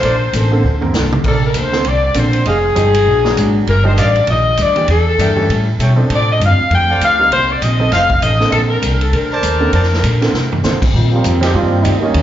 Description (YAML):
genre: jazz, big band swing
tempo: 198 BPM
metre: 4/4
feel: swing 60% on 8ths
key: Bb major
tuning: A4 = 440 Hz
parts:
  - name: edgy saxophone section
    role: melody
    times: 0.0-10.6 s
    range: Ab4 to G5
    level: -15 LUFS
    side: left 2 dB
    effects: slapback echo
  - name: picked steel-string acoustic guitar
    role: accompaniment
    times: 0.0-12.2 s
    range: A2 to C5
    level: -24 LUFS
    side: left 3 dB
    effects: slapback echo
  - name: clear trumpet section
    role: stabs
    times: 0.0-9.9 s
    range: G4 to A5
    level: -22 LUFS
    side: right 2 dB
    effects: slapback echo
  - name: upright bass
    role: bass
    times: 0.0-12.2 s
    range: F1 to D3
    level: -15 LUFS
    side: equal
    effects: none
  - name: swinging big-band drum kit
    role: drums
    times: 0.0-12.2 s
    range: crash cymbal, hi-hat, kick drum, ride cymbal, snare drum, toms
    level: -21 LUFS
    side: right 1 dB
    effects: none
  - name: clear baby grand piano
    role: accompaniment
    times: 0.5-12.1 s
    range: D3 to C5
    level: -20 LUFS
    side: right 3 dB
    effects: slapback echo
  - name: warm trombone section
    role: second line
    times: 11.1-12.2 s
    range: Eb3 to G4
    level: -16 LUFS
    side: right 3 dB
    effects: slapback echo
room: light reverb, small room ambience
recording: live gig heard through the venue's PA, club reverb, nothing above 7.5 kHz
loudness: -11 LUFS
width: side -11 dB against mid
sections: 0.0-1.2 A section; 1.2-10.9 A section; 10.9-12.2 B section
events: drum fill 0.6-1.2, 10.3-10.6; trombone section solo 10.9-12.2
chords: 0.0 Bbmaj9; 2.5 Fm9; 3.1 Bbaug7; 3.7 Ebmaj9; 4.9 Em7b5; 5.5 A7; 6.1 Dm7; 7.3 Cm7; 7.9 F7; 8.5 Bbmaj9; 10.9 Eb69